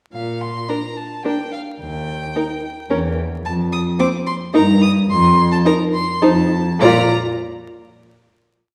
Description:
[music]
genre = quick classical-period movement for string quartet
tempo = 108 BPM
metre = 3/4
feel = straight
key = Bb major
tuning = A4 = 440 Hz
[part]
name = rich violin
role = melody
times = 0.1-7.1 s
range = F5 to Eb6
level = -25 LUFS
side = equal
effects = none
[part]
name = rich cello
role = bass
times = 0.1-7.1 s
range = Eb2 to Bb2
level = -21 LUFS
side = equal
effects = none
[part]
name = rich violin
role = second line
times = 0.7-7.1 s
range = Bb4 to D5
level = -26 LUFS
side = equal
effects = none
[part]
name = rich viola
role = accompaniment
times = 0.7-7.1 s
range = C4 to F4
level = -22 LUFS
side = equal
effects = none
[sound]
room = wet recital hall reverb, RT60 1.5 s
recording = heard from further back in the room, vinyl crackle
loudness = -18 LUFS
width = mono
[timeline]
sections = 0.1-6.8 A section; 6.8-8.5 final chord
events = none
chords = 0.1 Bb; 1.8 Eb; 2.9 Em; 3.5 F5; 4.6 Eb/G (rootless); 5.1 F5; 6.2 F; 6.8 Bb5

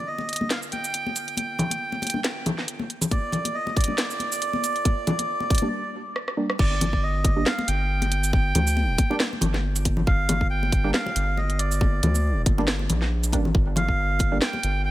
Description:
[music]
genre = deep dubstep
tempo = 138 BPM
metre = 4/4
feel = swing 56% on 16ths, half-time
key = G minor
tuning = A4 = 441 Hz
[part]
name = melodica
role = melody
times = 0.0-14.9 s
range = D5 to G5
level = -28 LUFS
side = right 2 dB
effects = dub echo
[part]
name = soft dub sub bass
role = bass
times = 0.0-14.9 s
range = G1 to D2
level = -26 LUFS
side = equal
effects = high-pass filter
[part]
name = congas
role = percussion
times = 0.2-14.6 s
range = none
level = -29 LUFS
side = left 2 dB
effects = none
[part]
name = garage drum kit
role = drums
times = 0.3-14.7 s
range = crash cymbal, hi-hat, rim click, shaker, snare drum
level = -27 LUFS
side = equal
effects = high-pass filter on snare, high-pass filter on hats, high-pass filter on perc, high-pass filter on cymbals, high-pass filter on room
[part]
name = filtered dub chord stab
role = stabs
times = 0.4-14.9 s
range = G3 to D4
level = -31 LUFS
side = right 2 dB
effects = chorus, dub echo
[part]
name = electronic kick drum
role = drums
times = 3.1-14.3 s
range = none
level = -22 LUFS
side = equal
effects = none
[sound]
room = light reverb, digital ambience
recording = none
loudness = -21 LUFS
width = side -15 dB against mid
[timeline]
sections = 0.0-6.6 A section; 6.6-14.9 B section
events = build-up 0.0-6.6; filter sweep on synth stab 0.0-6.6; break 5.7-6.6; drum fill 6.2-6.6; drop 6.6-14.9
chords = 0.0 Gm

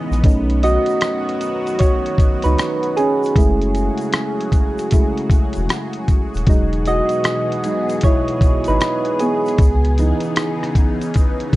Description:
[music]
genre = lo-fi hip hop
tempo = 77 BPM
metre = 4/4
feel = swing 65% on 16ths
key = E major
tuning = A4 = 440 Hz
[part]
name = soft electric-piano-like synth keys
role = accompaniment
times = 0.0-11.6 s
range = E3 to D#5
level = -19 LUFS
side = right 1 dB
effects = chorus, cassette tape
[part]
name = lush unison pad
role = sustained chords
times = 0.0-11.6 s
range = B2 to D#5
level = -26 LUFS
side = left 1 dB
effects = chorus, phaser
[part]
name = soft dub sub bass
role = bass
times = 0.1-10.1 s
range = D#1 to C#2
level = -18 LUFS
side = equal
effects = none
[part]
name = lo-fi sampler-style drum kit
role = drums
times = 0.1-11.6 s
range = hi-hat, kick drum, rim click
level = -16 LUFS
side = equal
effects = none
[part]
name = egg shaker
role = percussion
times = 0.1-11.4 s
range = none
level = -45 LUFS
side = left 5 dB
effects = none
[sound]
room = light reverb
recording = dark, warm production, nothing above 10.6 kHz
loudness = -15 LUFS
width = side -17 dB against mid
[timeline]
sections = 0.0-11.6 A section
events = synth keys solo 0.0-11.6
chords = 0.2 B7; 3.4 F#m9; 6.5 Emaj7; 9.6 C#m9

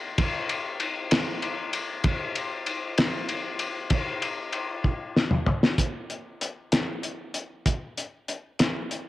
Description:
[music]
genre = rock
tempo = 64 BPM (dotted quarters)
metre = 6/8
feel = straight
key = none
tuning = none
[part]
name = cloth-damped thuddy drum kit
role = drums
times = 0.2-9.1 s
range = hi-hat, kick drum, ride cymbal, snare drum, toms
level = -25 LUFS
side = left 1 dB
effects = none
[sound]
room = moderate spring reverb, RT60 2.0 s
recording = 1960s-style stereo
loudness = -25 LUFS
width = side -16 dB against mid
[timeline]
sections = 0.0-5.8 A section; 5.8-9.1 B section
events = drum fill 4.8-5.8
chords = none

